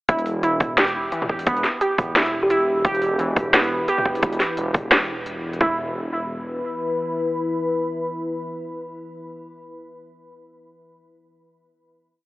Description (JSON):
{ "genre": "half-time drum and bass", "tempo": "174 BPM", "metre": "4/4", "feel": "swing 58% on 16ths, half-time", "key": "E minor", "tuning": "A4 = 440 Hz", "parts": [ { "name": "warbly dusty pluck", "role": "arpeggios", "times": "0.1-5.8 s", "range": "E3 to G4", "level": "-24 LUFS", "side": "right 1 dB", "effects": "chorus, digital delay" }, { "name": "dark detuned saw bass", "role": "bass", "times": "0.1-6.6 s", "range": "E1", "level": "-30 LUFS", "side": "equal", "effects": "none" }, { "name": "drum and bass drum kit", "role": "drums", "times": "0.1-5.6 s", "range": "hi-hat, snare drum, toms", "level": "-20 LUFS", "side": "equal", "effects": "none" }, { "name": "trap drum kit", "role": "drums", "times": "0.1-5.7 s", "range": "kick drum, toms", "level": "-20 LUFS", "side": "equal", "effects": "overdrive" }, { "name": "kalimba", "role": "melody", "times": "2.4-2.8 s", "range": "G4", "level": "-25 LUFS", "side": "right 1 dB", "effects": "digital delay" }, { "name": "deep dark ambient pad", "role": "sustained chords", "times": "3.4-9.1 s", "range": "E3 to B5", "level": "-28 LUFS", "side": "left 2 dB", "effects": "chorus, built-in reverb, sidechain pumping" } ], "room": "moderate huge ambient reverb, RT60 5.8 s", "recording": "telephone sound", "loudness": "-19 LUFS", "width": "side -19 dB against mid", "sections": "0.1-5.6 drop; 5.6-8.4 final chord", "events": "drop 0.1-5.6", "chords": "0.1 E5", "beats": "| 0.09 0.43 0.78 1.12 | 1.47 1.81 2.16 2.50 | 2.85 3.19 3.54 3.88 | 4.23 4.57 4.92 5.26 | 5.61 5.95 6.30 6.64 | 6.99 7.33 7.67 8.02" }